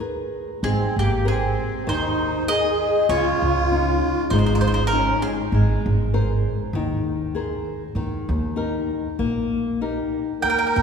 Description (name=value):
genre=italian folk, Italian serenade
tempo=98 BPM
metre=4/4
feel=swing 54% on 8ths, rubato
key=Ab major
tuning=A4 = 439 Hz
part: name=flamenco guitar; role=accompaniment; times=0.0-10.8 s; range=Db3 to C5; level=-26 LUFS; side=left 3 dB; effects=none
part: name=upright bass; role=bass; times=0.0-10.8 s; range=Ab1 to D#2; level=-24 LUFS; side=right 1 dB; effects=none
part: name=mandolin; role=melody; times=0.6-5.3, 10.4-10.8 s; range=G4 to G5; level=-24 LUFS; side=equal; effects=none
part: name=musette accordion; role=second line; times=0.6-5.4, 10.4-10.8 s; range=Bb3 to Bb4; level=-24 LUFS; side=right 2 dB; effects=none
room=wet church reverb, RT60 3.4 s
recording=recorded in a church or concert hall, studio reverb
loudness=-20 LUFS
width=side -6 dB against mid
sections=0.6-10.8 A section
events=none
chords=0.0 G#madd9; 0.6 Abadd9; 3.1 Dbadd9; 5.5 Abadd9; 8.0 Eb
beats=0.01 | 0.64 1.26 1.88 2.49 | 3.10 3.71 4.32 4.92 | 5.54 6.14 6.74 7.35 | 7.96 8.57 9.18 9.81 | 10.43